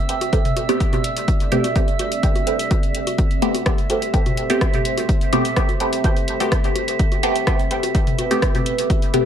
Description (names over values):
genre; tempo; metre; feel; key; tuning
dub techno; 126 BPM; 4/4; straight; A minor; A4 = 440 Hz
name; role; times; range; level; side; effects
deep dark ambient pad; sustained chords; 0.0-9.3 s; C4 to D5; -27 LUFS; right 1 dB; chorus, built-in reverb, sidechain pumping
drifting glass-harmonics texture; texture; 0.0-9.3 s; E5; -27 LUFS; right 6 dB; chorus, built-in reverb, sidechain pumping
filtered dub chord stab; riff; 0.1-7.8 s; A4 to G5; -28 LUFS; right 3 dB; phaser, ensemble chorus, sidechain pumping, dub echo
deep house drum kit; drums; 0.1-9.2 s; hi-hat, rim click; -27 LUFS; equal; overdrive
electronic bongos and toms; percussion; 0.2-9.2 s; none; -28 LUFS; left 3 dB; sidechain pumping on perc, sidechain pumping on toms, dub echo
electronic kick drum; drums; 0.3-9.0 s; none; -19 LUFS; equal; overdrive
filtered dub chord stab; stabs; 0.7-9.3 s; A3 to G4; -23 LUFS; equal; phaser, sidechain pumping, dub echo
room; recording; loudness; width
light reverb; none; -17 LUFS; side -9 dB against mid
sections
0.0-9.3 A section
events
none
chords
0.0 Am9